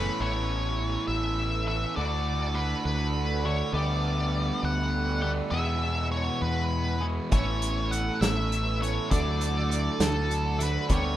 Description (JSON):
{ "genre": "indie rock", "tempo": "67 BPM (dotted quarters)", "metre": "6/8", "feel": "straight", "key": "A major", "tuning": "A4 = 440 Hz", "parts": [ { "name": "octave-fuzz lead guitar", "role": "melody", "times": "0.0-11.2 s", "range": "A4 to F#5", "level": "-31 LUFS", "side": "left 2 dB", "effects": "distortion" }, { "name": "fuzz guitar", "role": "riff", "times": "0.0-11.2 s", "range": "E2 to A4", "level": "-32 LUFS", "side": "right 6 dB", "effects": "distortion, lush chorus" }, { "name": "twelve-string electric guitar", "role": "riff", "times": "0.0-11.2 s", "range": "E2 to G#4", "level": "-35 LUFS", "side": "left 6 dB", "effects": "none" }, { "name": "growling fingered electric bass", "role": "bass", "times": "0.0-11.2 s", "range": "A1 to E2", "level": "-29 LUFS", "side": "equal", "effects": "overdrive" }, { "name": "loose indie drum kit", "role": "drums", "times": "7.3-11.0 s", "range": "hi-hat, kick drum, snare drum", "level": "-28 LUFS", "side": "equal", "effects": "none" } ], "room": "light reverb", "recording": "rough home demo mix", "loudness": "-25 LUFS", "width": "side -12 dB against mid", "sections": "0.2-11.2 A section", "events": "none", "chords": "0.2 Aadd9; 2.0 Dadd9; 3.7 Gadd9/D; 5.5 E; 7.3 Aadd9; 9.1 Dadd9" }